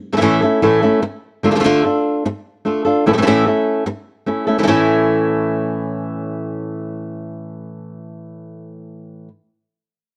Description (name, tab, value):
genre	flamenco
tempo	148 BPM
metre	4/4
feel	straight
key	A major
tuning	A4 = 440 Hz
part	flamenco guitar	solo	0.1-9.3 s	A2 to A4	-18 LUFS	equal	none
room	light reverb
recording	worn, warbling old tape, cassette tape, warbly pitch drift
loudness	-17 LUFS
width	mono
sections	0.0-4.7 A section; 4.7-7.9 B section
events	none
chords	0.0 A; 1.4 Dm; 3.0 A